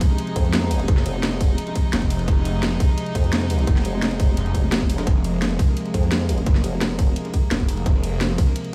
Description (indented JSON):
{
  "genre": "dark technical drum and bass",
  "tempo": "172 BPM",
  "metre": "4/4",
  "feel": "straight",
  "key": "F minor",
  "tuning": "A4 = 440 Hz",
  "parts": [
    { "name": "rich chamber string section", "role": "sustained chords", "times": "0.0-8.7 s", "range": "C3 to Eb4", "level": "-29 LUFS", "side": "equal", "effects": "sidechain pumping" },
    { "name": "breakbeat sampler-style drum kit", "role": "drums", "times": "0.0-8.6 s", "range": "hi-hat, snare drum", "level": "-38 LUFS", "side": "equal", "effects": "none" },
    { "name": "drum and bass drum kit", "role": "drums", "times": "0.0-8.7 s", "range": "hi-hat, ride cymbal, snare drum", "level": "-30 LUFS", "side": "equal", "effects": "overdrive" },
    { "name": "electronic kick drum", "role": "drums", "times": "0.0-8.5 s", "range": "none", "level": "-21 LUFS", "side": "equal", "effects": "overdrive" },
    { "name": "formant-sweep wobble bass", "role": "bass", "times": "0.4-7.1 s", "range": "F1 to F2", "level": "-25 LUFS", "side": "equal", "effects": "chorus" },
    { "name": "phased detuned saw bass", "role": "bass", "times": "0.9-8.4 s", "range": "F1 to Gb1", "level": "-26 LUFS", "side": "equal", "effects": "phaser, overdrive" }
  ],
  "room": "digital ambience",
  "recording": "small room ambience, faint mains hum",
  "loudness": "-21 LUFS",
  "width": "mono",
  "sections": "0.0-8.7 A section",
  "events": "none",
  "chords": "0.0 Fm"
}